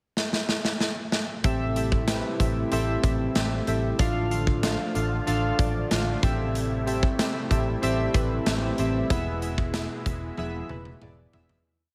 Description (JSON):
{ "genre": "1980s-style pop", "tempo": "94 BPM", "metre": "4/4", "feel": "straight", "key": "A minor", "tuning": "A4 = 441 Hz", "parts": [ { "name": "big rock drum kit", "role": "drums", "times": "0.2-11.6 s", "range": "hi-hat, kick drum, snare drum, toms", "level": "-30 LUFS", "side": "equal", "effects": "gated reverb" }, { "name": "warm analog keys", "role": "accompaniment", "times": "1.4-11.7 s", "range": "B3 to F5", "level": "-31 LUFS", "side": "equal", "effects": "chorus, shimmer reverb" }, { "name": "phased analog pad", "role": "sustained chords", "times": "1.4-11.6 s", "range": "B2 to F4", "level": "-36 LUFS", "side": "equal", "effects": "phaser, chorus, shimmer reverb" }, { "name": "vintage muted fingered electric bass", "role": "bass", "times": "1.4-11.6 s", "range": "E1 to A1", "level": "-31 LUFS", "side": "equal", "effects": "none" } ], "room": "light reverb", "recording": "none", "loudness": "-26 LUFS", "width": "mono", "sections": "0.0-1.4 pickup bar; 1.4-11.7 verse", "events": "drum fill 0.2-1.4, 10.4-11.7; fade-out 9.1-11.7", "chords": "0.0 N.C.; 1.4 Am7; 4.0 Dm/A; 6.2 Am7; 9.1 E" }